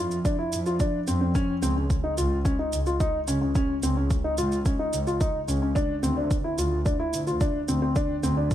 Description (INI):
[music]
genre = piano and strings electronica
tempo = 109 BPM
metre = 4/4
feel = straight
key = unclear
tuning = A4 = 440 Hz
[part]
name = dark upright piano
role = riff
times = 0.0-8.5 s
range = C4 to F4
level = -26 LUFS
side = left 1 dB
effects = ping-pong delay
[part]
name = dark studio double bass section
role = bass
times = 0.0-8.4 s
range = Db2 to F2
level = -28 LUFS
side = right 1 dB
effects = sidechain pumping
[part]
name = shaker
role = drums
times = 0.1-8.5 s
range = none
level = -37 LUFS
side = right 4 dB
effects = none
[part]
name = electronic kick drum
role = drums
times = 0.2-8.5 s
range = none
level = -26 LUFS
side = equal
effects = overdrive
[sound]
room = light reverb, studio reverb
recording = none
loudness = -23 LUFS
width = side -12 dB against mid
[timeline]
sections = 0.0-8.5 A section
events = none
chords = 0.0 F5; 1.4 Db; 5.8 N.C.